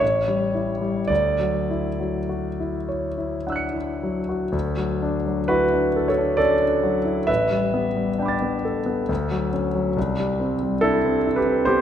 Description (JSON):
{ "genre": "classical, impressionist solo piano", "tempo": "49-71 BPM", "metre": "3/4", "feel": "rubato", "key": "D major", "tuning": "A4 = 441 Hz", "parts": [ { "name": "clear concert grand piano", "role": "solo", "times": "0.0-11.8 s", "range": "A1 to C#7", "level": "-20 LUFS", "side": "equal", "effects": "none" } ], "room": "wet scoring stage reverb, RT60 1.5 s", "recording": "none", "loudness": "-20 LUFS", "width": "side -9 dB against mid", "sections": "0.0-4.5 A section; 4.5-11.8 A section", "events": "none", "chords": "0.0 A7; 1.1 Dmaj9; 4.5 Dadd9; 7.3 A11; 9.1 Dmaj7; 10.0 Cadd9" }